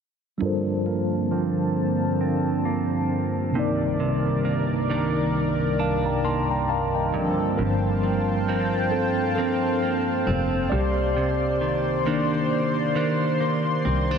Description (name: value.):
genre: R&B.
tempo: 67 BPM.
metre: 4/4.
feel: swing 58% on 16ths.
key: unclear.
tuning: A4 = 440 Hz.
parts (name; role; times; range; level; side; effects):
mellow tine electric piano; accompaniment; 0.4-14.2 s; C3 to C6; -26 LUFS; left 1 dB; medium stereo tremolo, low-pass filter.
chorused pulse-width pad; sustained chords; 0.4-14.2 s; C2 to C6; -25 LUFS; left 1 dB; low-pass filter.
direct-recorded clean electric guitar; arpeggios; 0.4-14.2 s; G2 to D4; -29 LUFS; right 5 dB; low-pass filter, ping-pong delay.
rich double bass; bass; 7.6-14.2 s; F1 to C2; -27 LUFS; left 1 dB; none.
room: wet huge ambient reverb, RT60 8.1 s.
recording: dreamy mix soaked in reverb.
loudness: -21 LUFS.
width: side -7 dB against mid.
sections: 0.4-7.6 A section; 7.6-14.2 B section.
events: filter sweep 0.4-7.6; tine electric piano solo 7.6-14.2.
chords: 0.4 Gm11; 3.6 Cm9; 7.1 Gm11; 10.7 Cm9.